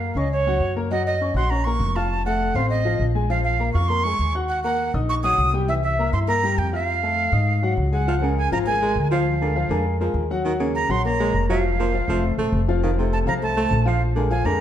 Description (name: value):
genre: latin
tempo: 202 BPM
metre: 4/4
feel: straight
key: Bb minor from 8.1 s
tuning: A4 = 441 Hz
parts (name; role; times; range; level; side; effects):
- breathy bright jazz flute; melody; 0.0-14.6 s; Db5 to Eb6; -24 LUFS; right 3 dB; none
- clear baby grand piano; accompaniment; 0.0-14.6 s; E3 to Gb6; -25 LUFS; left 4 dB; none
- upright bass; bass; 0.0-14.6 s; Eb1 to Ab2; -23 LUFS; equal; none
- warm baritone saxophone; second line; 8.1-14.6 s; C3 to A3; -27 LUFS; right 3 dB; none
room: moderate large studio reverb, RT60 1.3 s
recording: dark, warm production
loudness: -19 LUFS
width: side -10 dB against mid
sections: 0.0-8.1 A section; 8.1-14.6 B section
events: none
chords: 0.0 Gb; 0.9 Ebm7; 2.1 F7; 3.3 Bbm7; 4.5 Ebm; 5.7 C7; 6.9 F; 7.5 Ab5; 8.1 Db6; 9.3 Bb7/D; 10.4 Ebm7; 11.6 Fsus4; 12.2 F; 14.0 Bb7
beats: 0.01 0.31 0.61 | 0.91 1.21 1.51 1.80 | 2.10 2.40 2.70 3.00 | 3.30 3.60 3.90 4.19 | 4.49 4.79 5.09 5.39 | 5.68 5.98 6.28 6.58 | 6.88 7.17 7.47 7.77 | 8.07 8.37 8.66 8.96 | 9.26 9.55 9.85 10.15 | 10.45 10.74 11.04 11.34 | 11.63 11.93 12.23 12.53 | 12.82 13.12 13.42 13.72 | 14.01 14.31